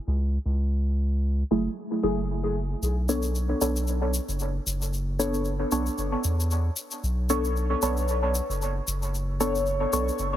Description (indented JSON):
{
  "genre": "dub techno",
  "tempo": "114 BPM",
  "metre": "4/4",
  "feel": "swing 56% on 16ths",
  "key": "unclear",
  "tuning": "A4 = 441 Hz",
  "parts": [
    { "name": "round analog bass", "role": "bass", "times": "0.1-10.4 s", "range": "F#1 to E2", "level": "-26 LUFS", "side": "equal", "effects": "none" },
    { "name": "deep mellow chord stab", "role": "stabs", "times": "1.5-10.0 s", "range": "F#3 to C#5", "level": "-27 LUFS", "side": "equal", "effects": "chorus, phaser, dub echo" },
    { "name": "egg shaker", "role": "percussion", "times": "2.8-10.3 s", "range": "none", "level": "-33 LUFS", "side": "left 4 dB", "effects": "none" }
  ],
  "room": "moderate lush hall reverb, RT60 2.3 s",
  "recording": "heavily compressed radio sound",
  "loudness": "-24 LUFS",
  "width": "side -12 dB against mid",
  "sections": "0.0-10.4 A section",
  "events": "none",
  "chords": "0.0 F#m9; 2.8 Bm9",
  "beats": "0.19 | 0.72 1.25 1.77 2.30 | 2.83 3.35 3.88 4.40 | 4.93 5.46 5.98 6.51 | 7.04 7.56 8.09 8.61 | 9.14 9.67 10.19"
}